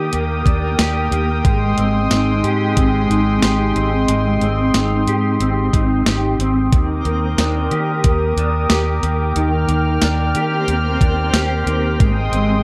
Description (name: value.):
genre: dream pop.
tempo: 91 BPM.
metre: 4/4.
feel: straight.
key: Eb major.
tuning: A4 = 440 Hz.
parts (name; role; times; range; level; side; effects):
warm analog pad; sustained chords; 0.0-12.6 s; Ab3 to F6; -23 LUFS; equal; chorus.
mellow electric guitar; arpeggios; 0.0-12.6 s; Eb3 to G4; -23 LUFS; equal; ensemble chorus, delay.
vintage muted fingered electric bass; bass; 0.0-12.6 s; Ab1 to Eb3; -22 LUFS; equal; none.
twinkling granular texture; texture; 0.0-1.7, 6.8-12.6 s; Ab3 to C4; -32 LUFS; equal; built-in reverb, delay.
crisp 8-bit digital drum machine; drums; 0.1-12.5 s; hi-hat, kick drum, snare drum, tambourine; -20 LUFS; equal; overdrive.
room: light reverb.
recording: none.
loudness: -17 LUFS.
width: mono.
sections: 0.0-12.6 A section.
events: none.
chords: 0.0 Ebmaj7; 1.4 Abmaj7; 6.7 Ebmaj7; 12.0 Abmaj7.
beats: 0.13 0.79 | 1.45 2.11 2.77 3.43 | 4.09 4.75 5.41 6.07 | 6.72 7.38 8.04 8.70 | 9.36 10.02 10.68 11.34 | 12.00.